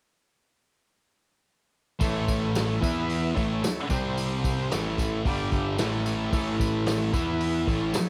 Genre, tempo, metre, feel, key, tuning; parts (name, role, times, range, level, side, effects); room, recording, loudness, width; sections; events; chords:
garage rock duo or trio; 111 BPM; 4/4; straight; A4 = 440 Hz
combo organ; sustained chords; 2.0-8.1 s; C4 to E5; -38 LUFS; equal; cassette tape
thick fuzz guitar; riff; 2.0-8.0 s; G2 to E4; -29 LUFS; equal; distortion, cassette tape
growling picked electric bass; bass; 2.0-8.0 s; G1 to E2; -36 LUFS; equal; overdrive
vintage drum kit; drums; 2.0-8.1 s; hi-hat, kick drum, snare drum; -32 LUFS; equal; cassette tape
tambourine; percussion; 2.0-8.1 s; -43 LUFS; equal
light reverb; home recording on cassette; -27 LUFS; mono
2.0-8.1 A section
2.0 A; 2.8 E5; 3.3 A; 3.9 C5; 4.7 A; 5.2 G5; 5.8 A; 7.1 E5